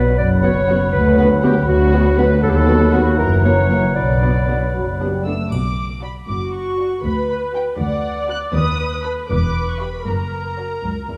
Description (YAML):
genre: cinematic, playful, whimsical film cue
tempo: 79 BPM (dotted quarters)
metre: 6/8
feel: straight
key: B minor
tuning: A4 = 439 Hz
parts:
  - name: large flute ensemble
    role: second line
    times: 0.0-5.3 s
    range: A#5 to B5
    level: -32 LUFS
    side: equal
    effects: none
  - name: mellow clarinet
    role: second line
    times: 0.0-5.2 s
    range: F#4 to D5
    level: -23 LUFS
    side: equal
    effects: none
  - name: warm oboe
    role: second line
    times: 0.0-5.2 s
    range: F#5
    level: -29 LUFS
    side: equal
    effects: none
  - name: dark bassoon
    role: accompaniment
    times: 0.0-5.3 s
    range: E3 to F#3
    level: -28 LUFS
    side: equal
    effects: none
  - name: mellow French horn section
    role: sustained chords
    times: 0.0-5.5 s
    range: F#3 to B3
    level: -29 LUFS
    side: equal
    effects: none
  - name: muted studio cello section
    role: bass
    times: 0.0-11.2 s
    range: D2 to B2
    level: -23 LUFS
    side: equal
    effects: none
  - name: muted studio double bass section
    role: bass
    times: 0.0-11.2 s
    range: E1 to D#2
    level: -23 LUFS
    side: equal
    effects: none
  - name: muted studio violin section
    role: second line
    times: 0.2-10.8 s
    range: F#4 to E5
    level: -29 LUFS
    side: equal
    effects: none
  - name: muted studio violin section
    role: melody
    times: 0.4-11.2 s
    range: F#5 to F#6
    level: -32 LUFS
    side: equal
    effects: none
  - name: muted studio viola section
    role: accompaniment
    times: 0.4-11.2 s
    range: A#3 to D5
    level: -26 LUFS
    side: equal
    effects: none
  - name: triangle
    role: percussion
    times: 5.5-6.5 s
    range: none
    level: -53 LUFS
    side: equal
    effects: none
room: moderate scoring stage reverb, RT60 1.9 s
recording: dark, warm production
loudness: -17 LUFS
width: mono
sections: 0.0-5.5 A section; 5.5-11.2 B section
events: none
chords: 0.0 Bm; 0.9 Bm/D; 2.4 B7/D#; 3.2 F#7; 4.0 Bm; 7.0 Bm/D; 8.5 B7/D#; 9.3 Em; 10.1 F#